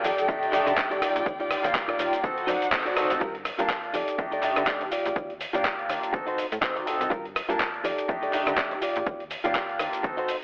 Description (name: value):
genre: filtered disco house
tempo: 123 BPM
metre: 4/4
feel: swing 57% on 16ths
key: unclear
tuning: A4 = 436 Hz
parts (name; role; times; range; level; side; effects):
- bright concert grand piano; accompaniment; 0.0-10.3 s; A3 to A5; -29 LUFS; equal; phaser, sidechain pumping, low-pass filter
- clear studio string section; sustained chords; 0.0-3.2 s; Eb4 to G5; -30 LUFS; equal; sidechain pumping, low-pass filter
- direct-recorded clean electric guitar; riff; 0.0-10.4 s; Eb4 to D5; -29 LUFS; equal; sidechain pumping, low-pass filter
- slap-like FM bass; bass; 0.0-10.1 s; D1 to D3; -33 LUFS; equal; sidechain pumping, low-pass filter
- dusty soul sampler-style drum kit; drums; 0.0-10.4 s; handclaps, hi-hat, rim click, shaker; -29 LUFS; equal; sidechain pumping on perc, sidechain pumping on hats
- electronic kick drum; drums; 0.3-10.2 s; none; -34 LUFS; equal; overdrive
room: moderate plate reverb, RT60 2.5 s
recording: telephone sound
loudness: -24 LUFS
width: side -29 dB against mid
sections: 0.0-3.2 A section; 3.2-10.4 B section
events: drop 0.0-3.2; band accent 2.7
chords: 0.0 F13; 1.0 Ebmaj9; 2.2 D7b9; 3.2 Gm7; 3.9 F13; 4.9 Ebmaj9; 6.1 D7b9; 7.1 Gm7; 7.8 F13; 8.8 Ebmaj9